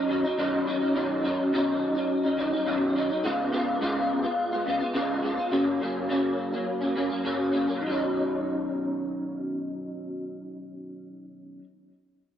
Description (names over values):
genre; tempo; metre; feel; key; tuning
indie pop; 105 BPM; 4/4; straight; B lydian; A4 = 440 Hz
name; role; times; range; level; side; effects
electric guitar through a small old amp; solo; 0.0-11.7 s; F#2 to E#4; -25 LUFS; equal; ensemble chorus, warbly pitch drift, tape echo
room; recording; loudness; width
moderate studio reverb, RT60 0.6 s; cassette tape; -25 LUFS; side -10 dB against mid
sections
0.0-7.8 A section; 7.8-10.1 B section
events
none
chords
0.0 Badd9; 3.2 C#7; 5.5 F#; 7.8 Badd9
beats
0.37 | 0.94 1.51 2.08 2.65 | 3.23 3.80 4.37 4.95 | 5.52 6.09 6.67 7.24 | 7.81 8.39 8.96 9.53